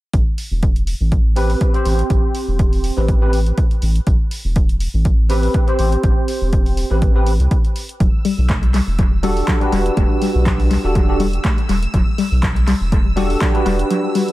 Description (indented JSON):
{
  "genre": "deep house",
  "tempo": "122 BPM",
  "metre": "4/4",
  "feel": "swing 55% on 16ths",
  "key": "A dorian",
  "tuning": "A4 = 439 Hz",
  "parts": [
    { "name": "round analog bass", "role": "bass", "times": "0.1-13.8 s", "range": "E1 to C2", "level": "-18 LUFS", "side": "equal", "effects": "sidechain pumping" },
    { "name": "electronic kick drum", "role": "drums", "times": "0.1-13.5 s", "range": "none", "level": "-16 LUFS", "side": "equal", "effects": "none" },
    { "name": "punchy analog drum machine", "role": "drums", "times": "0.1-14.3 s", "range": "handclaps, hi-hat", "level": "-29 LUFS", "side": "equal", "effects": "dub echo" },
    { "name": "bell-like tine electric piano", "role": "stabs", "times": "1.4-14.3 s", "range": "C4 to C5", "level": "-21 LUFS", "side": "right 1 dB", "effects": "ensemble chorus, sidechain pumping, dub echo" },
    { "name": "soft round pluck", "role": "arpeggios", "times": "8.0-14.2 s", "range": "F#3 to A3", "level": "-22 LUFS", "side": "left 3 dB", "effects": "chorus, sidechain pumping, tape echo" },
    { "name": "string machine, violins", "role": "texture", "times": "8.0-14.3 s", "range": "E6", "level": "-33 LUFS", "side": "equal", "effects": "ensemble chorus, sidechain pumping" }
  ],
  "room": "digital ambience",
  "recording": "echo-heavy mix",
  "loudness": "-14 LUFS",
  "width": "side -17 dB against mid",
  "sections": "0.1-14.3 A section",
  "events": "none",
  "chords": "0.1 Am9; 7.8 Em11",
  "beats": "| 0.14 0.63 1.12 1.61 | 2.10 2.59 3.08 3.58 | 4.07 4.56 5.05 5.54 | 6.04 6.53 7.02 7.51 | 8.00 8.49 8.99 9.48 | 9.97 10.46 10.95 11.45 | 11.94 12.43 12.92 13.41 | 13.90"
}